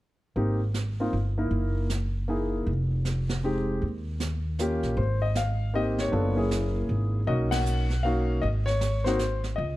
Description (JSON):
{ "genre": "jazz piano trio", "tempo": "156 BPM", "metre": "3/4", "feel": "swing 64% on 8ths", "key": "Ab major", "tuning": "A4 = 442 Hz", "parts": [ { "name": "warm concert grand piano", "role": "melody", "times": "0.4-9.8 s", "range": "Ab3 to F#5", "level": "-28 LUFS", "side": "left 1 dB", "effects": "none" }, { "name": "upright bass", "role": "bass", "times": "0.4-9.8 s", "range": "F1 to Eb2", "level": "-27 LUFS", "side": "equal", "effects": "none" }, { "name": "jazz brush drum kit", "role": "drums", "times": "0.4-9.8 s", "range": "brushed snare drum, hi-hat, ride cymbal, snare drum", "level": "-36 LUFS", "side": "right 4 dB", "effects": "none" } ], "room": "little or no reverb", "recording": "dark, warm production", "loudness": "-25 LUFS", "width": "side -16 dB against mid", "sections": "0.4-5.0 A section; 5.0-9.8 B section", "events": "band accent 7.5", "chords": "0.4 Abmaj7; 1.5 Gb13; 2.7 Fm7; 3.8 Eb7; 5.0 Abmaj7; 6.1 Gb7; 7.3 Bmaj7; 8.4 Ab" }